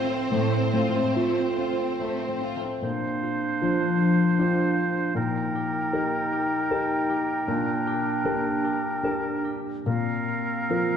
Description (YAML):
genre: cinematic, emotional film score for orchestra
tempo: 70-78 BPM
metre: 3/4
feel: rubato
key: Bb major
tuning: A4 = 441 Hz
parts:
  - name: rich studio violin section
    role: melody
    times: 0.0-2.6 s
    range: C5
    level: -32 LUFS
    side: left 2 dB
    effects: none
  - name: rich studio violin section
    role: second line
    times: 0.0-2.8 s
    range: A3 to F4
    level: -34 LUFS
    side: left 4 dB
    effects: none
  - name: warm concert grand piano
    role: accompaniment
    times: 0.0-11.0 s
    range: A2 to C5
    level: -28 LUFS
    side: equal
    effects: none
  - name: warm studio viola section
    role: accompaniment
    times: 0.0-2.6 s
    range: C4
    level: -31 LUFS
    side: right 4 dB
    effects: none
  - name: concert harp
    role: arpeggios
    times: 0.0-11.0 s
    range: A2 to A5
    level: -29 LUFS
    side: left 4 dB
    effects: none
  - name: rich studio cello section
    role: bass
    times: 0.3-1.0 s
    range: A2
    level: -30 LUFS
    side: right 5 dB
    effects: none
  - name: mellow concert flute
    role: second line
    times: 2.8-11.0 s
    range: F5 to G5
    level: -32 LUFS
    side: right 1 dB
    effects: none
  - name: warm clarinet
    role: second line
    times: 2.8-11.0 s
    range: C4 to Eb4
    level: -31 LUFS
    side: right 1 dB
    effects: none
  - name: warm oboe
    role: second line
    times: 2.8-11.0 s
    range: Bb4 to C5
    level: -30 LUFS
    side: right 3 dB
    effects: none
room: wet recital hall reverb, RT60 1.8 s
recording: dark, warm production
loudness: -23 LUFS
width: side -8 dB against mid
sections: 0.0-2.8 A section; 2.8-11.0 B section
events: none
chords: 0.0 F/A; 2.8 Bbadd9; 5.2 Eb/Bb; 7.5 Gm/Bb; 9.9 Fsus4/Bb